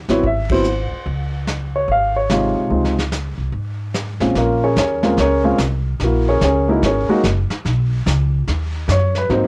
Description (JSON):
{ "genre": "jazz piano trio", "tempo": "146 BPM", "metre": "4/4", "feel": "swing 64% on 8ths", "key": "Db major, Bb minor from 4.4 s", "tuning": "A4 = 440 Hz", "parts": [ { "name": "upright bass", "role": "bass", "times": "0.0-9.5 s", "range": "Gb1 to Ab2", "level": "-22 LUFS", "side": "equal", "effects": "none" }, { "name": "warm baby grand piano", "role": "melody", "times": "0.1-9.5 s", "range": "Bb2 to F5", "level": "-19 LUFS", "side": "equal", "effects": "cassette tape" }, { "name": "vintage brush drum kit", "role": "drums", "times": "0.1-9.5 s", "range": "brushed snare drum, hi-hat, kick drum, ride cymbal, snare drum", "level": "-28 LUFS", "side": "equal", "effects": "cassette tape" } ], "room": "light reverb", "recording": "home recording on cassette", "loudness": "-18 LUFS", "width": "mono", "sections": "0.0-4.4 A section; 4.4-9.5 B section", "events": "band accent 0.4", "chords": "0.2 Abaug; 1.1 Dbmaj7; 4.4 Bbm9; 6.0 Gb9; 7.7 Badd9" }